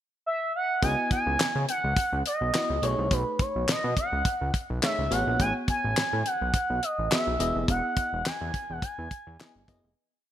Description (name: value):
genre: early-eighties boogie funk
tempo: 105 BPM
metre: 4/4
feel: swing 56% on 16ths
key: unclear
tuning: A4 = 438 Hz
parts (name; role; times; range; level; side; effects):
- expressive portamento lead; melody; 0.3-9.7 s; B4 to G#5; -28 LUFS; right 1 dB; chorus
- FM electric piano; accompaniment; 0.8-9.9 s; A3 to E5; -33 LUFS; equal; chorus
- fat analog bass; bass; 0.8-9.9 s; E1 to C#3; -30 LUFS; equal; none
- damped 70s drum kit; drums; 0.8-9.8 s; handclaps, hi-hat, kick drum, snare drum; -28 LUFS; equal; none
room: light reverb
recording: bright 1980s-style digital production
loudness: -24 LUFS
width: side -11 dB against mid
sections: 0.0-0.8 pickup bar; 0.8-10.0 verse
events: fade-out 7.7-10.0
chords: 0.0 N.C.; 0.8 C#m11; 2.8 B13; 5.1 Amaj13; 7.4 Emaj7